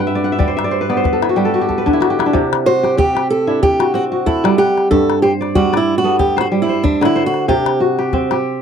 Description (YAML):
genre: west african traditional, West African string and xylophone music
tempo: 93 BPM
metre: 4/4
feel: swing 55% on 16ths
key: C lydian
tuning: A4 = 442 Hz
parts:
  - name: fingerpicked old ladder-braced acoustic guitar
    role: melody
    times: 0.0-7.8 s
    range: D4 to C5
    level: -16 LUFS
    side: right 2 dB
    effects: none
  - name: kora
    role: arpeggios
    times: 0.0-8.6 s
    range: G2 to G5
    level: -16 LUFS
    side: equal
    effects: none
  - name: calabash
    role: percussion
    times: 0.4-8.4 s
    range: none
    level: -20 LUFS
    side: left 5 dB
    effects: none
room: little or no reverb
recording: dry, close 1970s-style studio recording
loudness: -13 LUFS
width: side -7 dB against mid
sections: 0.0-2.3 A section; 2.3-8.6 B section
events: kora fill 0.0-2.3; drum fill 1.7-2.3; steel-string acoustic guitar solo 2.3-8.6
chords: 0.0 G; 2.3 C; 4.9 G; 7.5 C